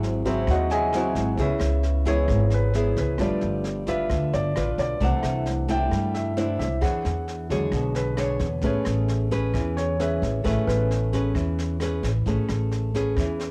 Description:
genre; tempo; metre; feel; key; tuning
bossa nova; 132 BPM; 4/4; straight; A major; A4 = 441 Hz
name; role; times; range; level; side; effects
nylon-string guitar; accompaniment; 0.0-13.5 s; G#2 to C#5; -30 LUFS; equal; plate reverb
warm baby grand piano; accompaniment; 0.0-12.3 s; D3 to G#5; -30 LUFS; equal; plate reverb
upright bass; bass; 0.0-13.5 s; G1 to G2; -28 LUFS; equal; none
jazz brush drum kit; drums; 0.0-13.5 s; kick drum, rim click, snare drum; -36 LUFS; equal; cassette tape
room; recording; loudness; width
light reverb; home recording on cassette; -24 LUFS; mono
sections
0.0-12.3 A section; 12.3-13.5 B section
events
grand piano solo 0.0-12.3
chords
0.0 G#7b13; 1.4 C#m7; 3.2 G7; 5.0 C69; 6.8 E13; 8.6 Amaj9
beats
0.02 0.48 0.93 | 1.38 1.83 2.29 2.74 | 3.20 3.65 4.10 4.56 | 5.01 5.46 5.92 6.37 | 6.82 7.28 7.73 8.18 | 8.64 9.09 9.54 10.00 | 10.45 10.90 11.36 11.81 | 12.26 12.72 13.17

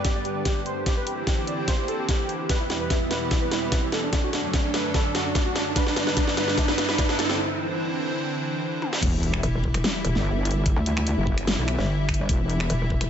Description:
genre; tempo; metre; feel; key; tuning
heavy wobble dubstep; 147 BPM; 4/4; half-time; E minor; A4 = 439 Hz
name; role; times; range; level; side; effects
soft supersaw; melody; 0.0-7.4 s; C4 to D5; -28 LUFS; right 1 dB; low-pass filter, ping-pong delay
lush unison pad; sustained chords; 0.0-13.1 s; E2 to E4; -30 LUFS; equal; chorus, sidechain pumping
dubstep drum kit; drums; 0.0-13.1 s; crash cymbal, finger snaps, hi-hat, snare drum, toms; -28 LUFS; equal; high-pass filter on snare, high-pass filter on hats, high-pass filter on toms, high-pass filter on cymbals
electronic kick drum; drums; 0.0-13.0 s; none; -25 LUFS; equal; none
riser and sub drop; sound effects; 0.0-10.7 s; none; -31 LUFS; right 1 dB; none
wobble bass; bass; 9.0-12.7 s; E1 to B1; -24 LUFS; equal; chorus, overdrive
metallic wobble bass; bass; 9.4-13.1 s; E1 to D2; -24 LUFS; equal; chorus, overdrive
room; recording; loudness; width
light reverb; nothing above 7.9 kHz; -22 LUFS; side -8 dB against mid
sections
0.0-9.0 A section; 9.0-13.1 B section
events
build-up 0.0-9.0; drum fill 0.0-7.4, 8.8; riser 0.0-7.4; filter sweep on supersaw synth 0.0-9.0; break 7.4-9.0; drop 9.0-13.1; impact 9.0-10.7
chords
0.0 G; 0.9 Cadd9; 2.5 Em; 4.1 D/F#; 5.8 G; 7.4 Cadd9; 9.0 Em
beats
0.05 0.45 | 0.86 1.27 1.68 2.09 | 2.50 2.90 3.31 3.72 | 4.13 4.54 4.94 5.35 | 5.76 6.17 6.58 6.99 | 7.39 7.80 8.21 8.62 | 9.03 9.43 9.84 10.25 | 10.66 11.07 11.47 11.88 | 12.29 12.70

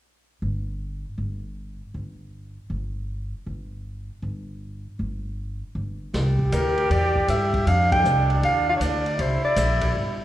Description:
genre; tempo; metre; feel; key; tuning
jazz, small-group swing and bop; 158 BPM; 4/4; swing 66% on 8ths; C mixolydian; A4 = 445 Hz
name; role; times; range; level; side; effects
upright bass; bass; 0.4-10.2 s; G1 to G2; -26 LUFS; equal; none
bright trombone; second line; 6.1-10.2 s; D4 to G4; -26 LUFS; right 1 dB; none
open jazz drum kit; drums; 6.1-10.1 s; hi-hat, kick drum, ride cymbal, snare drum; -29 LUFS; equal; none
breathy soprano saxophone; melody; 6.5-9.9 s; Bb4 to G5; -23 LUFS; equal; none
room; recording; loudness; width
moderate recital hall reverb, RT60 1.4 s; recorded in a church or concert hall; -21 LUFS; side -13 dB against mid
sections
0.0-6.1 A section; 6.1-10.2 B section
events
band accent 7.9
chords
0.0 N.C.; 6.1 C9; 7.7 Fsus2; 9.2 C9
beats
| 0.04 0.42 0.80 1.19 | 1.57 1.95 2.33 2.71 | 3.09 3.48 3.86 4.24 | 4.62 5.00 5.38 5.76 | 6.14 6.52 6.90 7.28 | 7.66 8.04 8.43 8.80 | 9.19 9.56 9.95

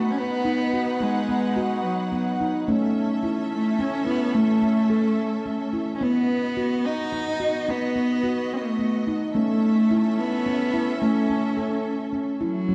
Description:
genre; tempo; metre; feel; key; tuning
world meditative, meditative tuned percussion; 72 BPM (dotted quarters); 6/8; straight; unclear; A4 = 440 Hz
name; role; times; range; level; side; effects
warm cello; melody; 0.0-12.7 s; F#3 to D#4; -27 LUFS; equal; tape echo
rich studio string section; sustained chords; 0.0-12.7 s; B3 to F#5; -34 LUFS; equal; none
handpan; arpeggios; 0.0-12.7 s; F#3 to A4; -27 LUFS; equal; none
room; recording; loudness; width
wet scoring stage reverb, RT60 1.9 s; dark, warm production; -24 LUFS; mono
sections
0.0-12.7 A section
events
none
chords
0.0 B; 2.7 A; 6.0 B; 9.4 A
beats
0.17 | 1.01 1.84 | 2.68 3.51 | 4.35 5.18 | 6.01 6.85 | 7.68 8.52 | 9.35 10.19 | 11.02 11.85 | 12.69

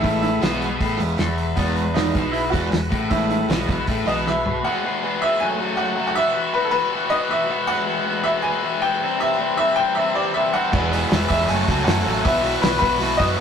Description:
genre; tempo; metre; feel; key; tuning
indie rock; 158 BPM; 4/4; straight; E major; A4 = 440 Hz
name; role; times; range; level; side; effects
bright upright piano; melody; 0.0-13.4 s; B3 to G#5; -22 LUFS; equal; none
tonewheel organ; sustained chords; 0.0-4.6, 10.7-13.4 s; E4 to C#6; -32 LUFS; right 2 dB; slow rotary speaker
crunchy overdriven guitar; riff; 0.0-4.3, 10.7-13.4 s; F#2 to A4; -26 LUFS; right 3 dB; none
raw garage guitar; riff; 0.0-13.4 s; E2 to G#4; -22 LUFS; left 3 dB; overdrive
hollow-body short-scale fingered electric bass; bass; 0.0-4.6, 10.7-13.3 s; E1 to F#2; -27 LUFS; equal; none
cloth-damped thuddy drum kit; drums; 0.0-4.5, 10.7-13.3 s; crash cymbal, hi-hat, kick drum, snare drum, toms; -24 LUFS; right 1 dB; none
room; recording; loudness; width
moderate stone room reverb, RT60 1.1 s; rough rehearsal-room recording, tube saturation; -18 LUFS; side -7 dB against mid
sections
0.0-4.6 A section; 4.6-13.4 B section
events
drum fill 4.3-4.6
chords
0.0 E; 5.4 F#madd9; 6.2 Bsus4; 7.7 E/B; 9.0 C; 10.7 Emaj7; 11.5 F#madd9; 12.2 Bsus4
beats
| 0.03 0.42 0.80 1.18 | 1.57 1.95 2.34 2.72 | 3.10 3.49 3.87 4.25 | 4.64 5.02 5.40 5.78 | 6.16 6.55 6.93 7.31 | 7.69 8.07 8.45 8.83 | 9.21 9.59 9.97 10.35 | 10.73 11.11 11.49 11.87 | 12.25 12.63 13.01 13.39

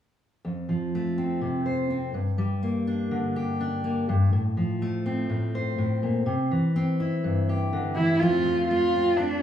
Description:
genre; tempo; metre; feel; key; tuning
folk; 124 BPM; 4/4; straight; F major; A4 = 440 Hz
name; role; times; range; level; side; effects
fingerpicked steel-string acoustic guitar; accompaniment; 0.4-9.4 s; F2 to C5; -24 LUFS; left 1 dB; none
dark cello; melody; 8.0-9.4 s; D4 to F4; -22 LUFS; right 1 dB; none
room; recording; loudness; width
wet large studio reverb, RT60 0.9 s; band playing live in one room, small room reverb; -23 LUFS; side -10 dB against mid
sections
0.5-8.2 A section; 8.2-9.4 B section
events
none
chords
0.5 F; 2.1 Gm; 4.3 F/A; 6.3 C; 8.2 F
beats
| 0.45 0.94 1.42 1.91 | 2.39 2.88 3.36 3.84 | 4.33 4.81 5.30 5.78 | 6.27 6.75 7.24 7.72 | 8.21 8.69 9.18

